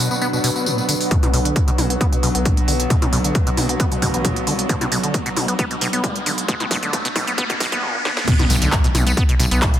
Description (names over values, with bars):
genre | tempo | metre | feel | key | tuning
driving peak-time techno | 134 BPM | 4/4 | straight | B minor | A4 = 444 Hz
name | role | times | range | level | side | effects
acid bass, saw | riff | 0.0-9.8 s | A2 to B3 | -23 LUFS | equal | sidechain pumping, dub echo
metallic inharmonic drone | drone | 0.0-7.8 s | B2 to F#3 | -28 LUFS | left 1 dB | chorus, built-in reverb, sidechain pumping
deep dark ambient pad | texture | 0.0-7.8 s | D4 to F#5 | -28 LUFS | equal | chorus, built-in reverb, sidechain pumping
techno drum kit | drums | 0.1-9.8 s | crash cymbal, handclaps, hi-hat, snare drum, tambourine, toms | -23 LUFS | equal | high-pass filter on perc, high-pass filter on hats, high-pass filter on toms, high-pass filter on snare, high-pass filter on cymbals, high-pass filter on room
swell, riser and impact | sound effects | 0.4-9.8 s | none | -27 LUFS | equal | none
electronic kick drum | drums | 1.1-9.7 s | none | -19 LUFS | equal | none
gritty driven synth bass | bass | 1.3-9.7 s | F#1 to C2 | -23 LUFS | equal | sidechain pumping
room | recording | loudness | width
light reverb, digital ambience | dense, heavily limited modern master, high-pass filter | -16 LUFS | side -11 dB against mid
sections
0.0-1.1 A section; 1.1-8.3 B section; 8.3-9.8 C section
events
filter sweep on acid bass 0.0-1.1, 1.1-8.3; swell 0.4-1.1; build-up 1.1-8.3; riser 1.1-8.3; filter sweep 1.1-8.3; drum fill 4.7-7.8, 8.1; drop 8.3-9.8; impact 8.3-9.8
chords
0.0 Bm; 8.3 N.C.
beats
0.22 0.66 | 1.11 1.56 2.01 2.46 | 2.90 3.35 3.80 4.25 | 4.69 5.14 5.59 6.04 | 6.49 6.93 7.38 7.83 | 8.28 8.72 9.17 9.62